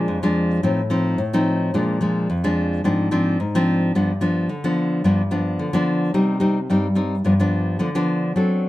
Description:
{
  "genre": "samba",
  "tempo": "109 BPM",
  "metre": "4/4",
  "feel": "straight",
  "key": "unclear",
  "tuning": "A4 = 438 Hz",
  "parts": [
    { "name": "nylon-string guitar", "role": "solo", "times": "0.0-8.7 s", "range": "F2 to A4", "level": "-18 LUFS", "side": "left 1 dB", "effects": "none" }
  ],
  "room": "moderate studio reverb, RT60 0.7 s",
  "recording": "dark, warm production",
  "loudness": "-18 LUFS",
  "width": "side -16 dB against mid",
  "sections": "0.0-6.2 A section; 6.2-8.7 B section",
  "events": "none",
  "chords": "0.0 Bb7 (rootless); 0.6 F7/A; 1.7 Bb7; 2.8 Dm7b5/Ab; 3.9 G7; 6.2 Cm; 7.3 G7",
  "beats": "0.09 0.64 1.19 | 1.74 2.29 2.84 3.39 | 3.94 4.50 5.05 5.60 | 6.15 6.70 7.25 7.81 | 8.36"
}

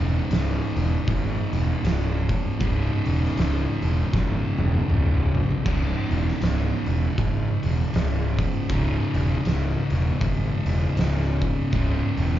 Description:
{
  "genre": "stoner and doom metal",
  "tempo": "79 BPM",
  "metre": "4/4",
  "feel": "swing 59% on 8ths",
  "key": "C# minor",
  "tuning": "A4 = 440 Hz",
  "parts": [
    { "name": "fuzz guitar", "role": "riff", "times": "0.0-12.4 s", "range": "C#2 to C#3", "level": "-25 LUFS", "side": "equal", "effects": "distortion" },
    { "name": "fuzz picked electric bass", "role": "bass", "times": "0.0-12.4 s", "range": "C#1 to G#1", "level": "-24 LUFS", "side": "equal", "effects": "overdrive" },
    { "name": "oversized low-tuned drum kit", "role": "drums", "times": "0.0-12.4 s", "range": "crash cymbal, hi-hat, kick drum, snare drum, toms", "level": "-28 LUFS", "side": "equal", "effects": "none" }
  ],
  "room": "little or no reverb",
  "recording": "live gig heard through the venue's PA, cassette tape, club reverb, nothing above 7.5 kHz",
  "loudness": "-21 LUFS",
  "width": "side -12 dB against mid",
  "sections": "0.0-12.4 A section",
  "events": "drum fill 4.1-5.7",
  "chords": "0.0 C#m",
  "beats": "0.31 1.08 1.84 | 2.61 3.37 4.14 4.90 | 5.66 6.42 7.18 7.94 | 8.70 9.46 10.22 10.97 | 11.73"
}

